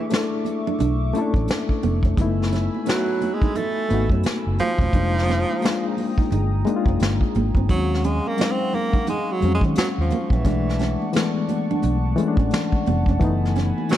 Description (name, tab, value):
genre	R&B, neo-soul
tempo	87 BPM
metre	4/4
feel	swing 62% on 16ths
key	unclear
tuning	A4 = 440 Hz
part	breathy tenor saxophone	melody	0.0-14.0 s	Fb3 to C4	-25 LUFS	right 3 dB	slapback echo
part	reed electric piano	accompaniment	0.0-14.0 s	E3 to A4	-24 LUFS	left 5 dB	fast tremolo
part	chorused pulse-width pad	sustained chords	0.0-14.0 s	A3 to Fb6	-33 LUFS	equal	none
part	nylon-string guitar	second line	0.1-14.0 s	A3 to Eb4	-29 LUFS	right 7 dB	none
part	vintage brush drum kit	drums	0.1-14.0 s	hi-hat, kick drum, snare drum	-23 LUFS	equal	none
part	congas	percussion	0.1-14.0 s	none	-35 LUFS	right 8 dB	none
part	vintage muted fingered electric bass	bass	0.8-13.7 s	Fb1 to Eb3	-22 LUFS	equal	none
room	light reverb, small room ambience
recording	dark, warm production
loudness	-19 LUFS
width	side -12 dB against mid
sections	0.0-14.0 A section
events	none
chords	0.0 Bm11; 2.2 Gbm11; 4.9 Fm11; 7.7 Ebm11; 10.4 Bm11; 13.2 Gbm11